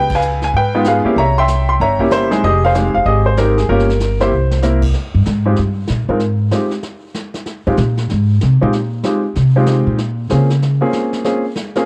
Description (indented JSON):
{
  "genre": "jazz piano trio",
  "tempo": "190 BPM",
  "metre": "4/4",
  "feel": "swing 63% on 8ths",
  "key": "F minor",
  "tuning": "A4 = 441 Hz",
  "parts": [
    { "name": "clear baby grand piano", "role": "melody", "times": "0.0-11.9 s", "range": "Ab3 to C6", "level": "-18 LUFS", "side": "equal", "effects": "none" },
    { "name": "upright bass", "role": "bass", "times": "0.0-10.8 s", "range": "E1 to Db3", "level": "-17 LUFS", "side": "equal", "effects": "none" },
    { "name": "vintage brush drum kit", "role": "drums", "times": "0.1-11.9 s", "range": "brushed snare drum, crash cymbal, hi-hat, kick drum, ride cymbal, snare drum", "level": "-30 LUFS", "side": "equal", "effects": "cassette tape" }
  ],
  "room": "light reverb",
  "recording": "home recording on cassette",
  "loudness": "-15 LUFS",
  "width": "mono",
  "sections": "0.0-4.9 A section; 4.9-11.9 B section",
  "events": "band accent 0.1; drum fill 4.3-4.6; upright bass solo 4.9-11.9",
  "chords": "0.0 Db7; 1.2 C7b9; 2.4 Fm9; 3.7 Gm7b5; 4.3 C7; 4.9 Fm9; 10.0 Bbm7",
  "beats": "0.23 0.54 0.86 | 1.17 1.49 1.80 2.11 | 2.43 2.74 3.06 3.37 | 3.69 4.00 4.32 4.63 | 4.95 5.26 5.58 5.89 | 6.21 6.52 6.84 7.15 | 7.47 7.78 8.10 8.41 | 8.73 9.05 9.36 9.68 | 9.99 10.31 10.63 10.94 | 11.26 11.57"
}